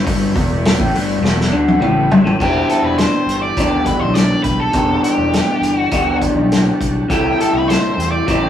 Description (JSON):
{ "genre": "psychedelic rock", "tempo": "102 BPM", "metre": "4/4", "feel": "straight", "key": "E minor", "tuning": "A4 = 441 Hz", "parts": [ { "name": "overdriven combo organ", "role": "sustained chords", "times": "0.0-8.5 s", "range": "G3 to F#5", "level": "-28 LUFS", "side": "right 2 dB", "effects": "none" }, { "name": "electric guitar through a small old amp", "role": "riff", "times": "0.0-8.5 s", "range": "E2 to G4", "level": "-16 LUFS", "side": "left 1 dB", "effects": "phaser" }, { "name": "fuzz fingered electric bass", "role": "bass", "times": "0.0-8.5 s", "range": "E1 to E2", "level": "-22 LUFS", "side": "equal", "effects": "overdrive" }, { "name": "vintage drum kit", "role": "drums", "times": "0.1-8.4 s", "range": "crash cymbal, hi-hat, kick drum, snare drum, toms", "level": "-18 LUFS", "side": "left 1 dB", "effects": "none" }, { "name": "octave-fuzz lead guitar", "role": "melody", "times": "2.4-8.5 s", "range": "G4 to D5", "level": "-20 LUFS", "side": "left 1 dB", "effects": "distortion" } ], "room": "moderate studio reverb, RT60 0.6 s", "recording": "rough rehearsal-room recording, small room ambience", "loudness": "-13 LUFS", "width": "side -10 dB against mid", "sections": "0.0-2.4 A section; 2.4-8.5 B section", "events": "drum fill 1.2-2.4", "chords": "0.0 Em; 2.4 Em7; 7.1 C6" }